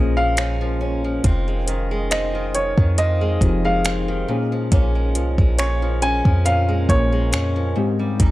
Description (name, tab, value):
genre	contemporary R&B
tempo	69 BPM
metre	4/4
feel	swing 54% on 16ths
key	Bb dorian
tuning	A4 = 440 Hz
part	warm baby grand piano	melody	0.0-7.7 s	Db5 to Ab5	-23 LUFS	right 1 dB	analog delay
part	mellow FM electric piano	accompaniment	0.0-8.3 s	Ab2 to Bb4	-25 LUFS	left 2 dB	chorus
part	glassy FM pad	sustained chords	0.0-8.3 s	Db4 to G5	-31 LUFS	left 2 dB	ensemble chorus, built-in reverb, sidechain pumping
part	picked old ladder-braced acoustic guitar	arpeggios	0.0-8.3 s	F2 to Eb4	-27 LUFS	right 1 dB	analog delay
part	warm 808-style bass	bass	0.0-8.3 s	F1 to F2	-21 LUFS	equal	none
part	smooth R&B drum kit	drums	0.4-8.3 s	finger snaps, hi-hat, kick drum	-19 LUFS	equal	none
room	digital ambience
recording	dry, gritty hardware recording, cassette tape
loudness	-17 LUFS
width	side -17 dB against mid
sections	0.0-8.3 A section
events	none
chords	0.0 Bbm7; 1.2 Fm7; 4.3 Bbm7; 7.8 Abmaj7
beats	0.37 | 1.24 2.11 2.98 3.85 | 4.72 5.59 6.46 7.33 | 8.20